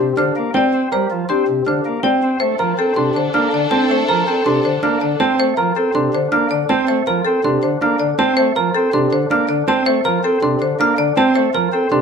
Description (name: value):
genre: classical, minimalist pattern music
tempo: 161 BPM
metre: 4/4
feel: straight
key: Bb major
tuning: A4 = 439 Hz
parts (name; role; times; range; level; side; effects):
- marimba with medium mallets; melody; 0.0-12.0 s; G4 to D5; -20 LUFS; left 4 dB; none
- pipe organ, cornet; accompaniment; 0.0-12.0 s; C3 to C4; -21 LUFS; left 1 dB; none
- warm baby grand piano; arpeggios; 0.0-12.0 s; C4 to Bb4; -19 LUFS; right 5 dB; none
- xylophone with rubber mallets; arpeggios; 0.0-12.0 s; G5 to F6; -22 LUFS; equal; none
- rich chamber violin section; sustained chords; 2.4-5.2 s; D4 to A4; -22 LUFS; left 2 dB; none
room: moderate large studio reverb, RT60 0.9 s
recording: close, detailed microphones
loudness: -14 LUFS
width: side -6 dB against mid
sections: 0.0-2.4 A section; 2.4-12.0 B section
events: none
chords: 0.0 Gm7; 2.4 Bbmaj7